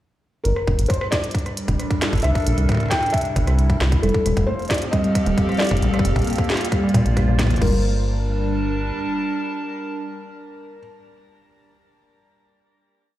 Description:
IDM; 134 BPM; 4/4; straight; G minor; A4 = 441 Hz
felt-muted upright piano; melody; 0.4-10.8 s; A4 to G5; -27 LUFS; left 1 dB; tape echo, shimmer reverb
warbly tape-like pad; sustained chords; 1.1-11.0 s; C3 to A5; -27 LUFS; equal; chorus, built-in reverb, phaser, shimmer reverb
deep acid bass; bass; 0.5-8.9 s; Eb1 to Bb2; -19 LUFS; equal
glitchy drum kit; drums; 0.5-7.7 s; crash cymbal, hi-hat, rim click, snare drum; -28 LUFS; equal; overdrive
electronic kick drum; drums; 0.7-7.7 s; -22 LUFS; equal; overdrive
warbly dusty pluck; arpeggios; 4.0-7.8 s; F3 to G4; -24 LUFS; left 1 dB; analog chorus, tape echo, shimmer reverb
flickering grainy texture; texture; 4.4-7.6 s; F5; -36 LUFS; right 3 dB; built-in reverb, shimmer reverb
moderate echo chamber reverb, RT60 1.5 s; played on a big sound system in a bare room, large studio reverb; -18 LUFS; side -14 dB against mid
0.5-7.6 groove; 7.6-11.2 final chord
0.5 Gm; 2.2 C7; 4.0 F7; 5.8 Bbmaj7; 7.6 Gm
| 0.45 0.90 1.35 1.79 | 2.24 2.69 3.14 3.58 | 4.03 4.48 4.93 5.38 | 5.82 6.27 6.72 7.17 | 7.62 8.06 8.51 8.96 | 9.41 9.85 10.30 10.75

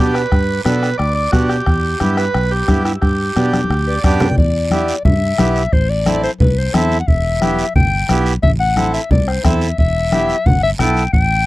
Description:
latin, cumbia; 178 BPM; 4/4; straight; A4 = 439 Hz
overdriven combo organ; melody; 0.0-4.0 s; E4 to D5; -20 LUFS; right 2 dB; spring reverb
accordion; accompaniment; 0.0-11.0 s; B3 to G5; -19 LUFS; right 3 dB
fingered electric bass; bass; 0.0-11.5 s; E1 to B2; -18 LUFS; equal
bombo; percussion; 0.1-11.3 s; -17 LUFS; equal
guiro; percussion; 0.2-11.5 s; -31 LUFS; right 4 dB
congas; percussion; 0.3-11.3 s; -21 LUFS; left 1 dB
breathy clarinet; second line; 3.9-11.5 s; B4 to G5; -19 LUFS; left 4 dB
little or no reverb; dry, close 1970s-style studio recording; -13 LUFS; side -18 dB against mid
0.0-4.4 A section; 4.4-11.5 B section
drum fill 3.5-4.4; accordion fill 3.7-4.4; clarinet solo 4.4-11.5
0.0 G; 1.7 Em; 3.0 G; 4.4 Em7; 5.7 Am; 7.1 Em; 8.4 Am; 9.8 Em
| 0.32 0.66 0.99 1.33 | 1.67 2.01 2.35 2.69 | 3.02 3.36 3.70 4.04 | 4.38 4.71 5.05 5.39 | 5.73 6.07 6.40 6.74 | 7.08 7.42 7.75 8.09 | 8.43 8.77 9.11 9.44 | 9.78 10.12 10.46 10.79 | 11.13

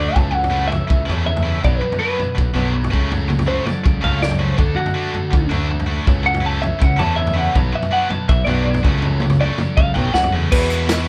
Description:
indie rock; 162 BPM; 4/4; straight; A4 = 440 Hz
twelve-string electric guitar; melody; 0.0-10.9 s; F#4 to A5; -24 LUFS; equal
bright tonewheel organ; sustained chords; 0.0-11.1 s; C#3 to E6; -36 LUFS; equal; slow rotary speaker, overdrive
scooped high-gain guitar; riff; 0.0-11.1 s; E2 to F#4; -29 LUFS; equal; distortion
scooped high-gain guitar; riff; 0.0-11.1 s; E2 to F#4; -29 LUFS; equal; distortion
growling fingered electric bass; bass; 0.0-11.1 s; B1 to E2; -22 LUFS; equal; overdrive
vintage drum kit; drums; 0.2-11.0 s; crash cymbal, hi-hat, kick drum, snare drum, toms; -23 LUFS; equal
bell-like tine electric piano; second line; 10.5-10.9 s; F#4; -38 LUFS; equal
moderate studio ambience, RT60 0.5 s; band playing live in one room; -18 LUFS; mono
0.0-10.5 A section
clean electric guitar solo 0.0-10.5
0.1 Aadd9/C#; 1.6 Bm; 2.9 F#m/C#; 4.6 D; 6.1 Aadd9/C#; 7.6 Bm; 8.8 F#m/C#; 10.5 Esus2
| 0.15 0.52 0.89 1.26 | 1.63 2.00 2.37 2.74 | 3.11 3.48 3.85 4.22 | 4.59 4.96 5.33 5.71 | 6.08 6.45 6.82 7.19 | 7.56 7.93 8.29 8.66 | 9.04 9.40 9.77 10.14 | 10.51 10.88

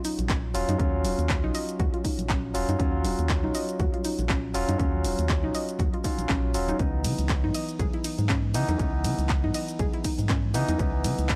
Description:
deep house; 120 BPM; 4/4; swing 56% on 16ths; A4 = 440 Hz
soft round pluck; arpeggios; 0.0-10.9 s; Db4 to Eb5; -36 LUFS; equal; chorus, sidechain pumping, analog delay
barky tine electric piano; stabs; 0.0-11.4 s; Fb3 to F4; -33 LUFS; equal; overdrive, sidechain pumping, analog delay
punchy analog drum machine; drums; 0.0-11.4 s; handclaps, hi-hat, ride cymbal, shaker; -36 LUFS; equal; small room ambience
impact; sound effects; 0.2-0.8 s; barely audible
organ-like FM bass; bass; 0.2-11.4 s; Eb1 to Db3; -30 LUFS; equal; sidechain pumping
congas; percussion; 0.2-11.2 s; -41 LUFS; equal
electronic kick drum; drums; 0.3-11.4 s; -31 LUFS; equal; small room ambience
digital ambience; dry, gritty hardware recording; -26 LUFS; mono
0.0-11.4 A section
impact 0.0-0.8
0.0 Ebm9; 6.8 Dbm9
0.29 | 0.80 1.29 1.79 2.29 | 2.79 3.29 3.79 4.29 | 4.79 5.29 5.79 6.29 | 6.79 7.29 7.79 8.29 | 8.79 9.29 9.79 10.29 | 10.79 11.29

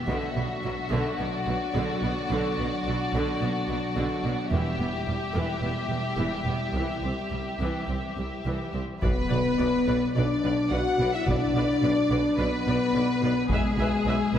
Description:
cinematic, epic orchestral film score; 108 BPM; 4/4; straight; B phrygian; A4 = 440 Hz
rich symphonic violin section; melody; 0.0-14.4 s; G#4 to F#5; -36 LUFS; left 3 dB
warm symphonic violin section; second line; 0.0-14.4 s; F#4 to F#5; -32 LUFS; left 2 dB
warm symphonic viola section; accompaniment; 0.1-14.4 s; D3 to E5; -34 LUFS; right 2 dB
mellow French horn section; sustained chords; 0.1-14.4 s; F#3 to F#4; -28 LUFS; left 2 dB
rich symphonic cello section; bass; 0.1-14.4 s; C2 to B2; -32 LUFS; right 2 dB
rich symphonic double bass section; bass; 0.1-14.4 s; E1 to C2; -32 LUFS; right 2 dB
clear tuba; bass; 9.0-14.4 s; B1; -34 LUFS; right 2 dB
taiko ensemble; drums; 9.0-14.0 s; -31 LUFS; equal
impact; sound effects; 9.0-11.3 s; -38 LUFS; equal
wet concert hall reverb, RT60 2.5 s; -24 LUFS; side -10 dB against mid
0.0-9.0 A section; 9.0-14.4 B section
build-up 0.0-9.0; impact 9.0-11.3
0.1 Bm; 4.5 Em; 6.7 C; 9.0 Bm; 13.5 E/B
| 0.08 0.64 1.19 1.75 | 2.30 2.85 3.40 3.96 | 4.51 5.07 5.62 6.18 | 6.75 7.32 7.88 8.45 | 9.02 9.58 10.15 10.71 | 11.26 11.82 12.38 12.94 | 13.50 14.05

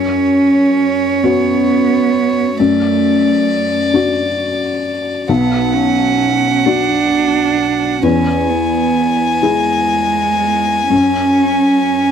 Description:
neoclassical piano and strings; 44 BPM (dotted quarters); 6/8; rubato; F# minor; A4 = 442 Hz
warm violin; melody; 0.0-12.1 s; C#5 to G#5; -18 LUFS; left 2 dB
warm cello; second line; 0.0-12.1 s; G#3 to D4; -16 LUFS; right 10 dB
felt-muted upright piano; accompaniment; 0.0-12.1 s; B1 to G#4; -16 LUFS; left 6 dB
light reverb; dry, close 1970s-style studio recording; -12 LUFS; side -8 dB against mid
0.0-12.1 A section
0.0 F#5; 2.6 D/F#; 5.3 Bm; 8.0 E; 10.9 F#sus2
1.23 | 2.58 3.94 | 5.29 6.65 | 8.03 9.43 | 10.90

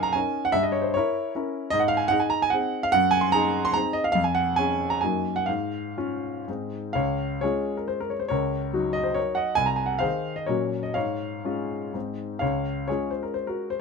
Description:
classical, romantic triple-time dance for piano with dotted rhythms; 115-161 BPM; 3/4; rubato; Db major; A4 = 440 Hz
clear grand piano; solo; 0.0-13.8 s; C2 to C6; -23 LUFS; equal
light reverb; close, detailed microphones; -23 LUFS; side -4 dB against mid
0.0-6.9 A section; 6.9-13.8 B section
0.0 Ebm7/Gb; 0.5 Gdim7; 1.7 Ab; 2.9 Ab7/Gb; 4.1 Db/F; 5.0 Ebm/Gb; 5.5 Db/Ab; 6.5 Ab; 6.9 Db; 8.3 Ebm7/Db; 9.6 Ab/C; 10.5 Gb/Bb; 11.0 Db/Ab; 12.0 Ab; 12.4 Db
0.15 | 0.54 0.94 1.34 | 1.72 2.11 2.53 | 2.92 3.33 3.74 | 4.14 4.56 5.01 | 5.48 5.98 6.48 | 6.95 7.43 7.89 | 8.31 8.75 9.17 | 9.58 10.01 10.48 | 10.96 11.46 11.95 | 12.42 12.88 13.35 | 13.80

